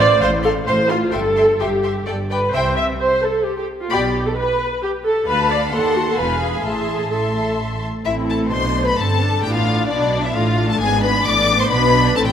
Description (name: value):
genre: quick classical-period movement for string orchestra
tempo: 131 BPM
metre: 3/4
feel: straight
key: C major, A minor from 5.3 s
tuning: A4 = 441 Hz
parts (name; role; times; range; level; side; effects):
- rich chamber violin section; melody; 0.0-12.3 s; D5 to D6; -22 LUFS; left 4 dB; none
- clear symphonic violin section; second line; 0.0-12.3 s; D4 to A5; -24 LUFS; left 4 dB; none
- rich studio viola section; accompaniment; 0.0-12.3 s; A3 to E5; -19 LUFS; right 1 dB; none
- clear chamber double bass section; bass; 0.0-12.3 s; E1 to D#2; -25 LUFS; right 2 dB; none
- rich studio cello section; bass; 0.0-12.3 s; D2 to C3; -24 LUFS; right 1 dB; none
room: wet scoring stage reverb, RT60 1.8 s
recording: none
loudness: -16 LUFS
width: side -8 dB against mid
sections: 0.0-8.1 A section; 8.1-12.3 B section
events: none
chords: 0.0 F/A; 1.1 C/G; 2.1 G; 2.5 C5; 3.9 G/B; 5.3 Bm7b5/D; 5.7 D#dim7; 6.2 E; 6.6 Am; 9.4 G9/A (rootless); 10.8 G#dim